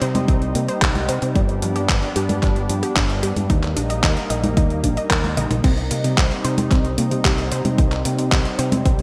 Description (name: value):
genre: italo disco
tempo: 112 BPM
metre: 4/4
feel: straight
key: C minor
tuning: A4 = 437 Hz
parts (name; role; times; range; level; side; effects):
- lush unison pad; sustained chords; 0.0-9.0 s; G3 to Eb4; -28 LUFS; equal; chorus
- unison pluck; arpeggios; 0.0-8.9 s; C3 to Eb5; -28 LUFS; equal; digital delay
- fingered electric bass with an envelope filter; bass; 0.0-9.0 s; G1 to C3; -26 LUFS; equal; tube saturation
- dusty soul sampler-style drum kit; drums; 0.0-9.0 s; congas, crash cymbal, handclaps, hi-hat, toms; -26 LUFS; equal; studio reverb, gated reverb
- electronic kick drum; drums; 0.3-9.0 s; none; -21 LUFS; equal; studio reverb
room: moderate lush hall reverb, RT60 1.9 s, digital ambience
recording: bright 1980s-style digital production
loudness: -20 LUFS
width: mono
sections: 0.0-9.0 A section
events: drum fill 5.4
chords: 0.0 Cm; 1.4 G; 3.5 Eb; 5.6 Cm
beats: 0.28 0.82 | 1.35 1.89 2.43 2.96 | 3.50 4.03 4.57 5.11 | 5.64 6.18 6.71 7.25 | 7.78 8.32 8.86